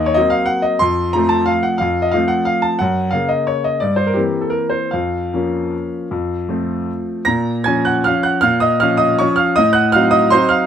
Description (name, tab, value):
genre	classical, piano waltz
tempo	138-191 BPM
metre	3/4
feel	rubato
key	Bb minor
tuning	A4 = 442 Hz
part	bright baby grand piano	solo	0.0-10.7 s	Eb2 to Bb6	-14 LUFS	equal	none
room	light reverb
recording	close, detailed microphones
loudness	-14 LUFS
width	side -8 dB against mid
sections	0.0-7.3 A section; 7.3-10.7 B section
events	none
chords	0.0 Cm7b5/Eb; 0.8 F; 2.8 Gb; 3.8 C7/G; 4.9 Bbm/F; 6.1 F; 7.3 Bbm; 9.6 Adim7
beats	0.17 0.49 | 0.82 1.15 1.49 | 1.81 2.14 2.48 | 2.81 3.13 3.48 | 3.83 4.17 4.53 | 4.95 5.34 5.73 | 6.12 6.49 6.88 | 7.26 7.66 8.06 | 8.44 8.82 9.21 | 9.58 9.95 10.33